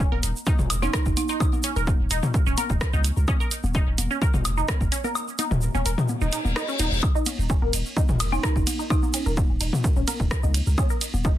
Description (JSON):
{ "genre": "minimal techno", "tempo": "128 BPM", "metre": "4/4", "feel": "straight", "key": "Eb minor", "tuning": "A4 = 441 Hz", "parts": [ { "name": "resonant blip pluck", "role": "riff", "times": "0.0-11.3 s", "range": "Db4 to Bb4", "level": "-30 LUFS", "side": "equal", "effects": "phaser, sidechain pumping, digital delay" }, { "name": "punchy sub bass", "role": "bass", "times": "0.0-11.3 s", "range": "Eb1 to Db2", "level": "-25 LUFS", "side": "equal", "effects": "sidechain pumping" }, { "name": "electronic kick drum", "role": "drums", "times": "0.0-11.3 s", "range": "none", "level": "-23 LUFS", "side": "equal", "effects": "none" }, { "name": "electronic congas, toms and woodblock", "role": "percussion", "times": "0.1-11.2 s", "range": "none", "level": "-30 LUFS", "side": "left 3 dB", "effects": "digital delay" }, { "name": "punchy analog drum machine", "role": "drums", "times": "0.2-11.1 s", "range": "hi-hat, ride cymbal, rim click", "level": "-30 LUFS", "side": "right 2 dB", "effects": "soft clipping on snare" }, { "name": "tube shaker", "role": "percussion", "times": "0.2-11.3 s", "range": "none", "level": "-35 LUFS", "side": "right 4 dB", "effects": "none" }, { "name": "folk marimba with medium hard mallets", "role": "melody", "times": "0.8-1.4, 8.3-9.4 s", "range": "Eb4", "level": "-30 LUFS", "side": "right 5 dB", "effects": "digital delay" }, { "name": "reverse cymbal", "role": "sound effects", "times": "6.3-7.0 s", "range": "none", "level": "-29 LUFS", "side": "left 4 dB", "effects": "none" } ], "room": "little or no reverb", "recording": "dense, heavily limited modern master", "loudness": "-21 LUFS", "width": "side -13 dB against mid", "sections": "0.0-11.4 A section", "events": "kick drops out 5.2-7.0; reverse cymbal 6.3-7.0", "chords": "0.0 Eb7(no3)", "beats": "0.00 0.47 0.94 | 1.40 1.87 2.34 2.81 | 3.28 3.75 4.22 4.68 | 5.15 5.62 6.09 6.56 | 7.03 7.50 7.97 8.44 | 8.90 9.37 9.84 10.31 | 10.78 11.25" }